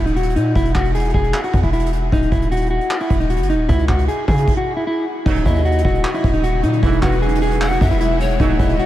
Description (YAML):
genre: hip hop, trap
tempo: 153 BPM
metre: 4/4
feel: half-time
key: Eb phrygian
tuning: A4 = 441 Hz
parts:
  - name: mellow electric guitar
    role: melody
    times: 0.0-8.9 s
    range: Eb4 to G#4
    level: -20 LUFS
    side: equal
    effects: diffuse ambient delay
  - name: distorted 808-style bass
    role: bass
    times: 0.0-8.8 s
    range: Eb1 to Db3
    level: -18 LUFS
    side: equal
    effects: distortion
  - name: soft brush drum kit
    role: drums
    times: 0.1-8.9 s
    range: crash cymbal, handclaps, hi-hat, kick drum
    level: -20 LUFS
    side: equal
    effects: none
  - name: granular cloud pad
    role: sustained chords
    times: 6.1-8.9 s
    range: B2 to E4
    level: -25 LUFS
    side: right 1 dB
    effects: built-in reverb, analog chorus
  - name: clear brass ensemble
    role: stabs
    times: 5.3-8.8 s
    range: B1 to Gb3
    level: -29 LUFS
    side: right 5 dB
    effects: diffuse ambient delay
  - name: breathy pan flute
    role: second line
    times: 5.5-8.9 s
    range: B4 to Gb5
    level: -26 LUFS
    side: left 4 dB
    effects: diffuse ambient delay
room: moderate huge ambient reverb, RT60 8.4 s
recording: dreamy mix soaked in reverb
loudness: -15 LUFS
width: side -13 dB against mid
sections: 0.0-5.3 A section; 5.3-8.9 B section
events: stop 4.5-5.3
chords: 0.0 Eb5; 0.6 Eadd9; 2.1 Ebm; 3.7 Dbmadd11; 5.3 Ebm7; 6.8 E